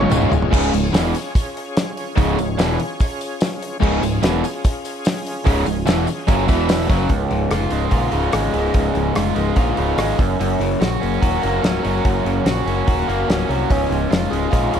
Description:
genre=classic rock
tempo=146 BPM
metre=4/4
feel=straight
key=Db major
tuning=A4 = 440 Hz
part: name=picked twelve-string acoustic guitar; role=accompaniment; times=0.0-0.5, 13.7-14.8 s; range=Db3 to Ab4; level=-28 LUFS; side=left 4 dB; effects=none
part: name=bright tonewheel organ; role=sustained chords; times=0.0-6.9 s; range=B3 to E5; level=-29 LUFS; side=equal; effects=slow rotary speaker, overdrive, chorus vibrato
part: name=biting overdriven guitar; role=riff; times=0.0-14.8 s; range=Db2 to Gb4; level=-22 LUFS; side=right 13 dB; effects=none
part: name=overdriven electric guitar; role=riff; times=0.0-14.8 s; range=Db2 to Gb4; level=-22 LUFS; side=left 12 dB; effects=none
part: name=overdriven semi-hollow guitar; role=riff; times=0.0-7.1 s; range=Db2 to F4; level=-24 LUFS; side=equal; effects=none
part: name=growling picked electric bass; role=bass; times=0.0-14.8 s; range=Db1 to C2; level=-23 LUFS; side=equal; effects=overdrive
part: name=damped 70s drum kit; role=drums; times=0.0-14.8 s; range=crash cymbal, hi-hat, kick drum, rim click, snare drum, toms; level=-20 LUFS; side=equal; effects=none
part: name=tambourine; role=percussion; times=0.1-7.0 s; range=none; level=-38 LUFS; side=left 16 dB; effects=none
room=light reverb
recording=none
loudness=-16 LUFS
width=side -8 dB against mid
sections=0.5-7.1 A section; 7.1-14.8 B section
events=drum fill 0.0-0.5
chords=0.0 Db; 6.5 E5; 6.9 Gb5; 7.1 Db; 10.2 Gb; 13.7 Db

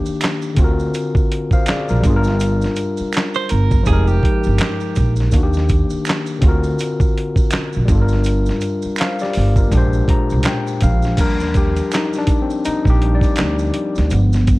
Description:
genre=R&B, neo-soul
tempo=82 BPM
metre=4/4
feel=swing 58% on 16ths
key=Eb major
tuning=A4 = 439 Hz
part: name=overdriven tine electric piano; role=accompaniment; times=0.0-14.6 s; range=Bb2 to Bb5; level=-20 LUFS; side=left 2 dB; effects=none
part: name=upright bass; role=bass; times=0.1-14.6 s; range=F1 to Eb2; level=-17 LUFS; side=right 1 dB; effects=none
part: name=maracas and finger snaps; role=percussion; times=0.1-14.6 s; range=none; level=-34 LUFS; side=right 6 dB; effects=none
part: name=dusty soul sampler-style drum kit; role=drums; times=0.2-14.6 s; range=crash cymbal, handclaps, hi-hat, kick drum, snare drum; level=-18 LUFS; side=right 1 dB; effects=none
part: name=clean electric guitar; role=second line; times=3.4-5.1 s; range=G4 to C5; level=-24 LUFS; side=right 8 dB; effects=none
room=studio reverb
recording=none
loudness=-14 LUFS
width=side -20 dB against mid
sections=0.0-11.2 A section; 11.2-14.6 B section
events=tine electric piano fill 9.7-11.2; tine electric piano solo 11.2-14.6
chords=0.0 Ebmaj7; 0.6 D7alt; 2.0 Gm7; 3.9 Fm11; 5.3 Ebmaj7; 6.4 D7alt; 7.9 Gm7; 9.7 Bb13; 11.2 Ebmaj9

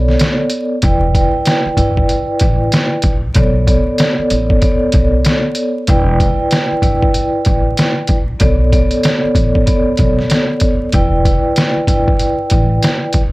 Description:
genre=hip hop, boom-bap hip-hop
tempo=95 BPM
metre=4/4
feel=swing 60% on 16ths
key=E dorian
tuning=A4 = 441 Hz
part: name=vibraphone with soft mallets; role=accompaniment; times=0.0-13.2 s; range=B3 to G5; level=-16 LUFS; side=equal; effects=cassette tape, high-pass filter, low-pass filter, plate reverb
part: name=upright bass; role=bass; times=0.0-13.3 s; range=E1 to B1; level=-17 LUFS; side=equal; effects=none
part: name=trip hop sampler-style drum kit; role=drums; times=0.1-13.3 s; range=hi-hat, kick drum, snare drum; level=-14 LUFS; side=equal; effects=overdrive
room=little or no reverb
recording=vinyl crackle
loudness=-11 LUFS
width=side -20 dB against mid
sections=0.0-13.3 A section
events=break 0.0-0.8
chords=0.0 Bm9; 0.8 Em7; 3.4 Bm9; 5.9 Em7; 8.4 Bm9; 10.9 Em7

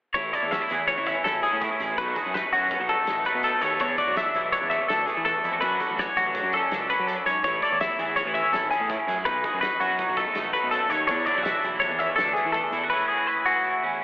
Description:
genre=math rock and midwest emo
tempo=165 BPM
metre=5/4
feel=straight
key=A major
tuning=A4 = 440 Hz
part: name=twelve-string electric guitar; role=arpeggios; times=0.1-13.8 s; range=F#4 to E5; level=-24 LUFS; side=left 1 dB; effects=diffuse ambient delay
part: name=loose indie drum kit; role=drums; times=0.1-12.8 s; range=hi-hat, kick drum, snare drum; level=-38 LUFS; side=equal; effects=none
part: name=electric guitar at the edge of break-up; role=accompaniment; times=0.2-14.0 s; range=E2 to A4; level=-28 LUFS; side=right 2 dB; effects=analog chorus
part: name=fuzz picked electric bass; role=bass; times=0.2-12.9 s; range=G#1 to F#3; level=-34 LUFS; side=equal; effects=overdrive
room=wet plate reverb, RT60 1.9 s, small room ambience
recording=dreamy mix soaked in reverb, telephone sound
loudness=-22 LUFS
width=side -19 dB against mid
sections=0.2-14.0 A section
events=none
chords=0.2 Amaj7; 2.0 B7; 3.8 E7sus4; 5.6 Dmaj7; 7.4 Amaj7; 9.3 B7; 11.1 E7sus4; 12.9 F#m11

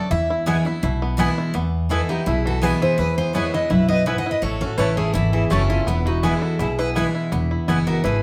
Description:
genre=bluegrass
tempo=166 BPM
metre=4/4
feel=straight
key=E major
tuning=A4 = 440 Hz
part: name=picked steel-string acoustic guitar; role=melody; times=0.0-8.2 s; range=E4 to F#5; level=-27 LUFS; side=equal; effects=none
part: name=picked steel-string acoustic guitar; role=accompaniment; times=0.0-8.2 s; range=E2 to E4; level=-25 LUFS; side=equal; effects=none
part: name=bluegrass banjo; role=arpeggios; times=0.0-8.2 s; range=E3 to A4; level=-30 LUFS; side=equal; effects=none
part: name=upright bass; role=bass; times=0.1-8.2 s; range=E1 to E2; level=-27 LUFS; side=equal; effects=none
part: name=mandolin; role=stabs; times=0.5-7.8 s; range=A3 to A5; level=-29 LUFS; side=equal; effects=none
part: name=clear fiddle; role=second line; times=1.9-8.2 s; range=B3 to D#5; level=-33 LUFS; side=equal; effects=none
room=wet studio reverb, RT60 0.8 s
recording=heard from further back in the room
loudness=-21 LUFS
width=mono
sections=0.0-1.5 A section; 1.5-8.2 B section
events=steel-string acoustic guitar solo 0.0-1.5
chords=0.1 E; 4.4 A; 5.9 E

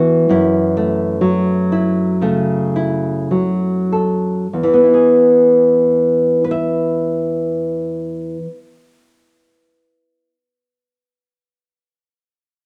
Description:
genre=folk, solo fingerstyle acoustic guitar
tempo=46-69 BPM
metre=4/4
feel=rubato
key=E major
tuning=A4 = 440 Hz
part: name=nylon-string guitar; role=solo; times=0.0-10.3 s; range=E2 to E5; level=-16 LUFS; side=equal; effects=none
room=moderate studio reverb, RT60 0.8 s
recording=none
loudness=-15 LUFS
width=mono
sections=0.0-4.5 A section; 4.5-9.6 B section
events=slowing down 0.0-4.5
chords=0.3 F#m7; 4.5 E

